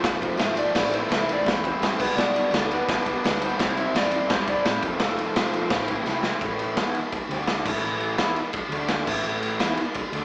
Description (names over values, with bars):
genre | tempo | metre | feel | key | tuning
garage rock duo or trio | 169 BPM | 4/4 | straight | A minor | A4 = 440 Hz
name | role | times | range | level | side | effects
electric slide guitar | melody | 0.0-5.7 s | A4 to E5 | -27 LUFS | equal | none
raw garage guitar | riff | 0.0-10.2 s | A2 to F4 | -27 LUFS | equal | overdrive
hollow-body short-scale picked electric bass | bass | 0.0-10.2 s | F1 to A2 | -38 LUFS | equal | none
raw garage drum kit | drums | 0.0-10.2 s | crash cymbal, kick drum, ride cymbal, snare drum | -24 LUFS | equal | none
tambourine | percussion | 0.0-6.4, 9.6-9.7 s | none | -46 LUFS | equal | none
room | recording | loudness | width
moderate large studio reverb, RT60 1.1 s | band playing live in one room, cassette tape, small speaker sound | -21 LUFS | side -28 dB against mid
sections
0.0-6.4 A section; 6.4-10.2 B section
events
drum fill 6.1-6.4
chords
0.0 F; 0.7 Am; 2.0 G/B; 3.6 C; 4.8 F; 5.7 Am; 6.4 A5; 7.3 D5; 7.7 A5; 8.7 D5; 9.1 A5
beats
0.03 0.39 | 0.74 1.10 1.46 1.81 | 2.17 2.52 2.88 3.23 | 3.59 3.94 4.30 4.65 | 5.00 5.36 5.71 6.07 | 6.42 6.78 7.13 7.48 | 7.84 8.19 8.55 8.90 | 9.26 9.61 9.97